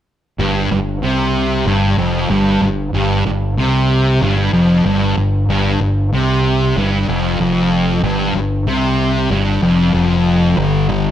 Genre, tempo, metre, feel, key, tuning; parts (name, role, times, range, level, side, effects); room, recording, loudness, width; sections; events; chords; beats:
rock; 94 BPM; 4/4; straight; A4 = 440 Hz
thick fuzz guitar; riff; 0.4-11.1 s; F2 to D3; -14 LUFS; equal; distortion
growling fingered electric bass; bass; 0.4-11.1 s; F1 to C2; -20 LUFS; equal; overdrive
moderate large studio reverb, RT60 1.2 s; -13 LUFS; side -11 dB against mid
0.4-10.6 A section
0.4 Fsus2; 10.6 G5
| 0.39 1.03 1.67 2.31 | 2.94 3.58 4.22 4.86 | 5.49 6.13 6.77 7.40 | 8.04 8.68 9.31 9.95 | 10.58